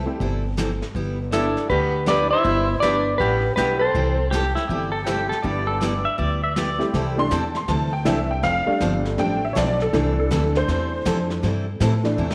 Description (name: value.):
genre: country, western swing.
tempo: 160 BPM.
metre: 4/4.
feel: swing 65% on 8ths.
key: C major.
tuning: A4 = 440 Hz.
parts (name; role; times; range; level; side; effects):
upright bass; bass; 0.0-12.3 s; F1 to A2; -27 LUFS; equal; none.
honky-tonk upright piano; accompaniment; 0.1-12.3 s; E3 to C6; -26 LUFS; equal; none.
picked steel-string acoustic guitar; accompaniment; 0.2-12.3 s; C3 to A4; -30 LUFS; equal; none.
vintage brush drum kit; drums; 0.2-12.3 s; brushed snare drum, hi-hat, kick drum, snare drum; -34 LUFS; equal; none.
clean lap steel guitar; melody; 1.3-4.3 s; E4 to E5; -22 LUFS; equal; none.
dark fiddle; second line; 1.3-4.3 s; B3 to E4; -31 LUFS; equal; none.
pedal steel guitar; second line; 4.3-6.9 s; E4 to E5; -27 LUFS; equal; slapback echo.
room: wet echo chamber reverb, RT60 1.4 s, small room ambience.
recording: none.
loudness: -22 LUFS.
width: mono.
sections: 0.0-6.9 A section; 6.9-12.3 B section.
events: honky-tonk piano solo 6.9-12.3; drum fill 12.2.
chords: 0.0 C6; 0.9 G6; 3.9 C6; 5.4 G6; 6.9 C6; 8.4 F6; 9.9 C6.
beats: 0.20 0.57 | 0.95 1.32 1.70 2.07 | 2.45 2.82 3.19 3.57 | 3.94 4.32 4.69 5.07 | 5.44 5.81 6.19 6.56 | 6.94 7.31 7.68 8.06 | 8.43 8.81 9.18 9.56 | 9.93 10.31 10.68 11.05 | 11.43 11.80 12.18.